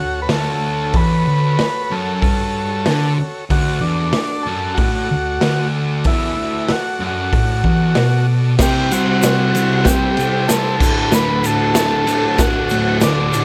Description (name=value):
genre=garage rock duo or trio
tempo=94 BPM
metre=4/4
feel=straight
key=D major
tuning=A4 = 440 Hz
part: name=overdriven combo organ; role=melody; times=0.0-13.4 s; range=D4 to B4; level=-23 LUFS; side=equal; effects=none
part: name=combo organ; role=sustained chords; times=0.0-13.4 s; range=G3 to D5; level=-31 LUFS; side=equal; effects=none
part: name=fuzz guitar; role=riff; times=0.0-13.4 s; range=D2 to C4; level=-20 LUFS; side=equal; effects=distortion
part: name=raw garage drum kit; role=drums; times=0.3-13.4 s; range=crash cymbal, hi-hat, kick drum, ride cymbal, snare drum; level=-21 LUFS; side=equal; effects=none
part: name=egg shaker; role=percussion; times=8.6-13.4 s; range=none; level=-30 LUFS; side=equal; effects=none
room=moderate small room reverb, RT60 0.5 s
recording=none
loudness=-17 LUFS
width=mono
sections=0.0-8.6 A section; 8.6-13.4 B section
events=none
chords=0.0 D; 8.6 C; 10.8 D